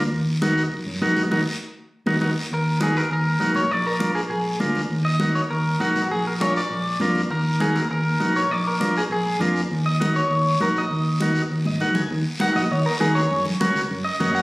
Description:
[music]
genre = latin, cumbia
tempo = 200 BPM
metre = 4/4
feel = straight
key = Eb harmonic minor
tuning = A4 = 445 Hz
[part]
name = overdriven combo organ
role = accompaniment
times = 0.0-14.4 s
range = Db4 to Ab5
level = -24 LUFS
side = equal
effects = none
[part]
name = fingered electric bass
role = bass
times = 0.0-14.4 s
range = Ab1 to Gb2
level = -24 LUFS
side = equal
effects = none
[part]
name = congas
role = percussion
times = 0.1-14.4 s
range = none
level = -27 LUFS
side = equal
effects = none
[part]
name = guiro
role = percussion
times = 0.1-14.4 s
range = none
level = -35 LUFS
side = left 1 dB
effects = none
[part]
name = electric guitar at the edge of break-up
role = melody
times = 2.5-14.4 s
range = Gb4 to Gb5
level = -24 LUFS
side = equal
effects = spring reverb, tape echo
[sound]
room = moderate studio reverb, RT60 0.6 s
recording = recorded on a phone in the room, studio reverb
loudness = -19 LUFS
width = side -22 dB against mid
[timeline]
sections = 0.0-2.5 A section; 2.5-12.1 B section; 12.1-14.4 C section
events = band accent 1.3-2.5; transistor combo organ fill 11.5-12.1; drum fill 11.7-12.1; clean electric guitar solo 12.1-14.4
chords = 0.1 Ebm; 3.7 Bb7; 4.9 Ebm; 6.1 Bb; 7.3 Ebm; 8.5 Bb7; 9.7 Ebm; 13.3 Gb

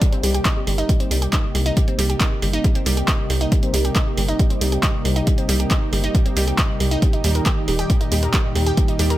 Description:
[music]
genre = uplifting trance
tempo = 137 BPM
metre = 4/4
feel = straight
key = unclear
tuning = A4 = 441 Hz
[part]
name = analog string pad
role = sustained chords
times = 0.0-9.2 s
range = Bb2 to G4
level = -26 LUFS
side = equal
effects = ensemble chorus, sidechain pumping
[part]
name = analog pluck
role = arpeggios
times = 0.0-9.1 s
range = G3 to Bb4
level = -25 LUFS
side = equal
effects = chorus, sidechain pumping, tape echo
[part]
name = electronic kick drum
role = drums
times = 0.0-8.9 s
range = none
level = -19 LUFS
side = equal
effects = none
[part]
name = punchy analog drum machine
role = drums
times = 0.0-9.2 s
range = handclaps, hi-hat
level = -25 LUFS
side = right 1 dB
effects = none
[part]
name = tight sequencer bass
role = bass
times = 0.2-9.2 s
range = Eb1 to Eb2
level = -20 LUFS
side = equal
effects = sidechain pumping
[sound]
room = light reverb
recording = none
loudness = -17 LUFS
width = side -15 dB against mid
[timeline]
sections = 0.0-9.2 A section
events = none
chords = 0.0 Cm7; 7.0 Eb

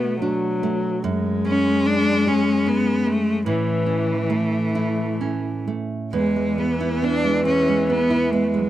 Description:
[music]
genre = celtic folk, Celtic slow air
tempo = 64-76 BPM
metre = 3/4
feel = rubato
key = E mixolydian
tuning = A4 = 440 Hz
[part]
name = clear cello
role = melody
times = 0.0-8.7 s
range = E3 to D4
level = -23 LUFS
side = equal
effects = none
[part]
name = dark viola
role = second line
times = 0.0-8.7 s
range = E3 to B3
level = -23 LUFS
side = left 4 dB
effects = none
[part]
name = nylon-string guitar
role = accompaniment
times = 0.0-8.7 s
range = E2 to G#4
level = -24 LUFS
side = right 5 dB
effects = none
[sound]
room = light reverb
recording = dry, close 1970s-style studio recording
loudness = -19 LUFS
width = side -13 dB against mid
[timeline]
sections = 0.0-6.1 A section; 6.1-8.7 B section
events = none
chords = 0.0 Bm7; 1.0 F#sus2; 3.5 A; 6.1 E

